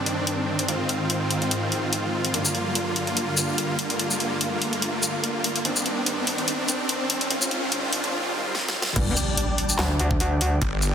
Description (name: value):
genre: heavy wobble dubstep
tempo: 145 BPM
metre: 4/4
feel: swing 54% on 16ths, half-time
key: G phrygian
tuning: A4 = 440 Hz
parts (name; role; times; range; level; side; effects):
- supersaw chords; sustained chords; 0.0-10.9 s; G2 to G5; -26 LUFS; equal; sidechain pumping, low-pass filter
- riser, swell and impact; sound effects; 0.0-10.6 s; none; -31 LUFS; equal; none
- dubstep drum kit; drums; 0.1-10.9 s; crash cymbal, handclaps, hi-hat, shaker, snare drum; -25 LUFS; left 1 dB; studio reverb
- metallic wobble bass; bass; 9.0-10.6 s; G1 to D2; -22 LUFS; equal; chorus, overdrive
- electronic kick drum; drums; 9.0-10.7 s; none; -26 LUFS; equal; studio reverb
- snarling distorted saw bass; bass; 10.6-10.9 s; G1; -23 LUFS; equal; distortion, overdrive
room: moderate lush hall reverb, RT60 2.2 s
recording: dense, heavily limited modern master, high-pass filter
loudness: -22 LUFS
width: side -8 dB against mid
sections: 0.0-9.0 A section; 9.0-10.9 B section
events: build-up 0.0-9.0; riser 0.0-8.1; swell 8.1-9.0; drum fill 8.5-9.0; drop 9.0-10.9; impact 9.0-10.6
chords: 0.0 Cmadd9/G; 0.7 Ab6; 2.3 Gm7; 5.7 Cmadd9/G; 7.3 Ab6; 9.0 G5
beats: 0.27 | 0.69 1.10 1.51 1.93 | 2.34 2.75 3.17 3.58 | 4.00 4.41 4.82 5.24 | 5.65 6.06 6.48 6.89 | 7.30 7.72 8.13 8.55 | 8.96 9.37 9.79 10.20 | 10.62